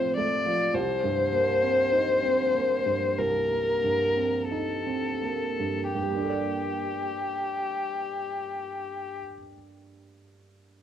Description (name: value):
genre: neoclassical piano and strings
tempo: 41-53 BPM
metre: 4/4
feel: rubato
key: G minor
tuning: A4 = 440 Hz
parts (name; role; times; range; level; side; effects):
- rich violin; melody; 0.0-9.2 s; G4 to D5; -26 LUFS; left 3 dB; cassette tape, plate reverb
- warm upright piano; accompaniment; 0.0-10.8 s; C2 to D5; -30 LUFS; right 5 dB; cassette tape, plate reverb
room: wet small room reverb, RT60 0.5 s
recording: home recording on cassette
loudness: -24 LUFS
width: side -10 dB against mid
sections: 0.0-6.0 A section; 6.0-10.8 B section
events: slowing down 0.0-6.0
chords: 0.0 F/A; 0.7 Cm7; 6.0 Gmadd9